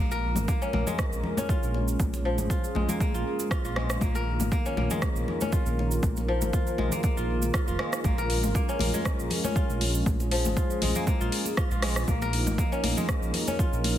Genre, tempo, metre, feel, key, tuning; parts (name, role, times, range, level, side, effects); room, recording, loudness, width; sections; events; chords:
afro house; 119 BPM; 4/4; swing 54% on 16ths; Bb minor pentatonic; A4 = 442 Hz
dark analog pad; sustained chords; 0.0-14.0 s; Eb3 to Bb4; -33 LUFS; equal; chorus, sidechain pumping
kora; arpeggios; 0.0-14.0 s; F3 to Bb4; -32 LUFS; left 2 dB; sidechain pumping, ping-pong delay
dark detuned saw bass; bass; 0.0-14.0 s; F1 to Bb1; -29 LUFS; equal; sidechain pumping
deep house drum kit; drums; 0.1-14.0 s; cabasa, hi-hat, rim click; -33 LUFS; right 1 dB
congas; percussion; 0.1-14.0 s; -34 LUFS; left 3 dB
electronic kick drum; drums; 0.5-13.7 s; -27 LUFS; equal
light reverb, digital ambience; heavily compressed radio sound, multiband compression; -24 LUFS; side -12 dB against mid
0.0-14.0 A section
0.0 Bbm7; 4.0 Ebsus2; 8.0 Bbm7